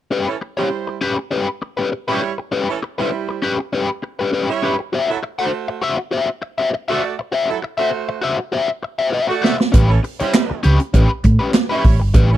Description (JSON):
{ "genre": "funk", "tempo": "100 BPM", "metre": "4/4", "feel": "straight", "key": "unclear", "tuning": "A4 = 440 Hz", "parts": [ { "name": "crunchy overdriven guitar", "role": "accompaniment", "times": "0.1-12.3 s", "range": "C#4 to F#5", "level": "-20 LUFS", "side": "left 3 dB", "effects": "wah" }, { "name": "warm horn section", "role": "second line", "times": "0.3-12.4 s", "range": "E3 to D5", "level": "-23 LUFS", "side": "right 7 dB", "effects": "none" }, { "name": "swinging big-band drum kit", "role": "drums", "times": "9.4-12.3 s", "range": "handclaps, hi-hat, kick drum, snare drum", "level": "-15 LUFS", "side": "right 1 dB", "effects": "none" }, { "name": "hollow-body short-scale fingered electric bass", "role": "bass", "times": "9.7-12.4 s", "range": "G1 to A2", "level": "-14 LUFS", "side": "right 1 dB", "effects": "none" } ], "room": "small room ambience", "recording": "none", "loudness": "-16 LUFS", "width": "side -13 dB against mid", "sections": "0.1-12.4 A section", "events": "drum fill 9.1-9.7", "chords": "0.1 Em6; 4.9 F#m7b5; 9.7 A9" }